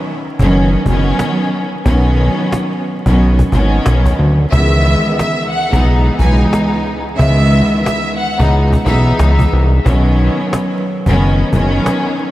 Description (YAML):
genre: hip hop, boom-bap hip-hop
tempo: 90 BPM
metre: 4/4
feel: swing 61% on 16ths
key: unclear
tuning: A4 = 440 Hz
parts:
  - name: rich studio string section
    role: accompaniment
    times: 0.0-12.3 s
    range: C#2 to D#4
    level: -15 LUFS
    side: equal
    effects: cassette tape
  - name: fat analog bass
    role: bass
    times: 0.4-11.8 s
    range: F#1 to D2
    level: -12 LUFS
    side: equal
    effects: none
  - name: cajon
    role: drums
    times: 0.4-12.3 s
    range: none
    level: -21 LUFS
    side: equal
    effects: none
  - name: rich studio violin section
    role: melody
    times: 4.5-9.0 s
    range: E5 to G#5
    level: -20 LUFS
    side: left 1 dB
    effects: diffuse ambient delay
room: moderate huge ambient reverb, RT60 4.1 s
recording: dreamy mix soaked in reverb, vinyl crackle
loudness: -11 LUFS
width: side -15 dB against mid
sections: 0.0-12.3 A section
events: break 0.0-4.5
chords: 0.0 Badd9; 4.5 C#m7; 9.9 Badd9